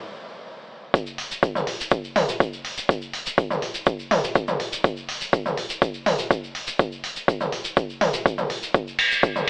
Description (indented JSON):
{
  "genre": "techno",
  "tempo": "123 BPM",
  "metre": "4/4",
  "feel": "straight",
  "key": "none",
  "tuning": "none",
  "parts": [
    { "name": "electronic kick drum", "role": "drums", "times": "0.9-9.3 s", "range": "none", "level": "-20 LUFS", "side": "equal", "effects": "overdrive" },
    { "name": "tube shaker", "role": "percussion", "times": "0.9-9.5 s", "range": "none", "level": "-35 LUFS", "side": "equal", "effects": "none" },
    { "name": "techno drum kit", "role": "drums", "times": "1.2-9.5 s", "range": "hi-hat, ride cymbal, toms", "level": "-28 LUFS", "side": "equal", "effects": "none" }
  ],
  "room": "digital ambience",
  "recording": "dry, gritty hardware recording, telephone sound",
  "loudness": "-21 LUFS",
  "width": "side -28 dB against mid",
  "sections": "0.9-9.5 A section",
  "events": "stop 0.0-0.9; drop 0.9-9.5",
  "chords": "none"
}